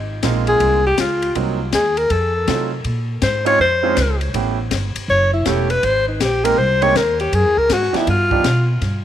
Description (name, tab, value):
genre	jazz, small-group swing and bop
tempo	161 BPM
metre	4/4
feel	swing 65% on 8ths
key	unclear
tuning	A4 = 440 Hz
part	upright bass	bass	0.0-9.0 s	E1 to C3	-21 LUFS	equal	none
part	warm concert grand piano	accompaniment	0.2-8.4 s	F3 to A4	-23 LUFS	right 14 dB	none
part	compact cocktail drum kit	drums	0.2-8.9 s	hi-hat, kick drum, ride cymbal, snare drum	-25 LUFS	left 6 dB	none
part	clear alto saxophone	melody	0.5-8.7 s	Eb4 to Db5	-17 LUFS	left 2 dB	tape echo
room	light reverb, studio reverb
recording	1960s-style stereo with parts hard left and right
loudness	-15 LUFS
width	side -10 dB against mid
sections	0.0-8.8 A section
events	none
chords	0.0 Ab69; 1.4 Cm7b5; 2.1 F7b9; 2.8 Bbm11; 4.3 A9; 5.8 Abmaj9; 7.3 Gbsus2; 8.1 G7b13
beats	0.23 0.60 0.98 | 1.35 1.72 2.10 2.47 | 2.84 3.22 3.59 3.96 | 4.34 4.71 5.08 5.46 | 5.83 6.20 6.58 6.95 | 7.32 7.70 8.07 8.44 | 8.82